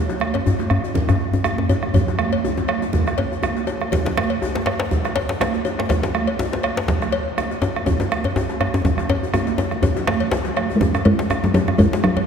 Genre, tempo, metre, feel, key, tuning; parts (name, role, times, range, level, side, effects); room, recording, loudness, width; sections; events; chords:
west african traditional, West African drum ensemble; 122 BPM; 4/4; swing 55% on 16ths; A4 = 440 Hz
bombo; percussion; 0.1-12.2 s; -24 LUFS; right 2 dB
djembe; percussion; 0.1-12.0 s; -27 LUFS; left 3 dB
congas; percussion; 0.2-12.2 s; -26 LUFS; right 6 dB
cowbell; percussion; 0.3-12.3 s; -29 LUFS; left 5 dB
djembe; percussion; 0.3-12.3 s; -22 LUFS; left 1 dB
talking drum; melody; 10.8-12.3 s; F#3 to G#3; -18 LUFS; equal
wet cathedral reverb, RT60 4.7 s; recorded in a church or concert hall; -18 LUFS; side -7 dB against mid
0.0-10.8 A section; 10.8-12.3 B section
drum fill 2.6-2.9, 8.9-10.8